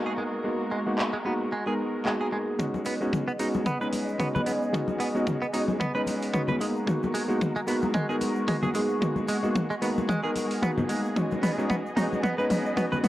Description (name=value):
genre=nu-disco, nu disco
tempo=112 BPM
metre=4/4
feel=swing 56% on 16ths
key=B major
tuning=A4 = 440 Hz
part: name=warm electric grand piano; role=accompaniment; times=0.0-13.1 s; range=G#3 to B4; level=-28 LUFS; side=equal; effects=cassette tape, analog delay
part: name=muted chamber string section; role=sustained chords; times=0.0-13.1 s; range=G#3 to D#5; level=-34 LUFS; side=equal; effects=sidechain pumping, low-pass filter, cassette tape
part: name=direct-recorded clean electric guitar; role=riff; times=0.1-13.1 s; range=G#2 to B4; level=-33 LUFS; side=right 2 dB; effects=analog chorus, low-pass filter, cassette tape
part: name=pop drum kit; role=drums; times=1.0-13.1 s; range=handclaps, hi-hat, toms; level=-31 LUFS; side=left 1 dB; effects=small room ambience, cassette tape
part: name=kick drum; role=drums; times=2.6-12.9 s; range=none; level=-37 LUFS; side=equal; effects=high-pass filter on kick, small room ambience, cassette tape, high-pass filter on snare, high-pass filter on room
part: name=egg shaker and congas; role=percussion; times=2.6-13.1 s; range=none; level=-34 LUFS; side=left 2 dB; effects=none
room=wet spring reverb, RT60 2.0 s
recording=home recording on cassette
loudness=-25 LUFS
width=side -15 dB against mid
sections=0.0-2.6 A section; 2.6-13.1 B section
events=filter sweep on clean electric guitar 0.0-2.6; build-up 2.6-13.1; drum fill 2.6-13.1; filter sweep on string section 2.6-13.1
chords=0.0 G#m9; 2.6 B6; 6.6 G#m9; 11.2 B6